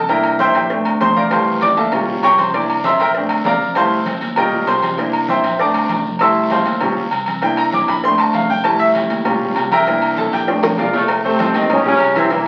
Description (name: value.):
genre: latin, salsa.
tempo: 196 BPM.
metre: 4/4.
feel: straight.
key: F major.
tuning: A4 = 440 Hz.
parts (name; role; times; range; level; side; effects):
bright grand piano; accompaniment; 0.0-12.4 s; Eb3 to E6; -18 LUFS; equal; none.
fingered electric bass; bass; 0.0-12.5 s; F1 to Eb2; -32 LUFS; equal; none.
agogo bells and timbales; percussion; 0.1-12.5 s; none; -25 LUFS; equal; none.
congas; percussion; 0.1-12.5 s; none; -30 LUFS; equal; none.
cowbell and bongos; percussion; 0.1-12.5 s; none; -28 LUFS; equal; none.
guiro; percussion; 1.3-12.5 s; none; -39 LUFS; equal; none.
mellow trombone section; melody; 10.9-12.5 s; A2 to Db4; -18 LUFS; equal; none.
room: wet large studio reverb, RT60 0.8 s.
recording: very old 78 rpm record, vinyl crackle.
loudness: -16 LUFS.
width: mono.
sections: 0.0-11.1 A section; 11.1-12.5 B section.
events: grand piano solo 0.0-11.1; drum fill 10.5-11.1.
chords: 0.1 C7; 0.7 Bbmaj7; 1.3 Fmaj7; 1.9 Eb7; 2.5 C7; 3.1 Bbmaj7; 3.8 Fmaj7; 4.4 Eb7; 5.0 C7; 5.6 Bbmaj7; 6.2 Fmaj7; 6.8 Eb7; 7.4 C7; 8.0 Bbmaj7; 8.6 Fmaj7; 9.3 Eb7; 9.9 C7; 10.5 Bbmaj7; 11.1 F; 11.7 Eb7.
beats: | 0.09 0.39 0.70 1.00 | 1.31 1.61 1.92 2.23 | 2.53 2.84 3.14 3.45 | 3.75 4.06 4.37 4.67 | 4.98 5.28 5.59 5.89 | 6.20 6.50 6.81 7.12 | 7.42 7.73 8.03 8.34 | 8.64 8.95 9.26 9.56 | 9.87 10.17 10.48 10.78 | 11.09 11.39 11.70 12.01 | 12.31.